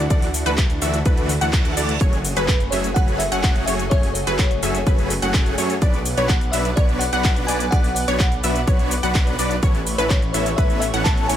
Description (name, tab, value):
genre	EDM, festival progressive house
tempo	126 BPM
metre	4/4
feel	straight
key	F# minor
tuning	A4 = 440 Hz
part	lush unison pad	sustained chords	0.0-11.4 s	D3 to F#5	-31 LUFS	left 1 dB	chorus, sidechain pumping
part	wide unison pluck	arpeggios	0.0-11.4 s	B4 to F#5	-27 LUFS	equal	sidechain pumping, tape echo
part	big supersaw lead	riff	0.0-11.4 s	E3 to F#5	-25 LUFS	equal	sidechain pumping, tape echo
part	wide detuned saw bass	bass	0.0-11.4 s	F#1 to F#2	-26 LUFS	equal	chorus, sidechain pumping
part	electronic kick drum	drums	0.1-11.2 s	none	-18 LUFS	equal	none
part	house drum kit	drums	0.1-11.4 s	handclaps, hi-hat, shaker	-27 LUFS	equal	none
part	reverse cymbal	sound effects	1.3-2.0 s	none	-33 LUFS	right 8 dB	none
part	bell-like FM electric piano	melody	2.5-11.4 s	B4 to A5	-27 LUFS	left 1 dB	chorus, phaser, tape echo
room	little or no reverb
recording	none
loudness	-17 LUFS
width	side -11 dB against mid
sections	0.0-11.4 A section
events	reverse cymbal 1.3-2.0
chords	0.0 Dadd9; 2.0 F#madd9; 5.8 Bm; 9.6 Aadd9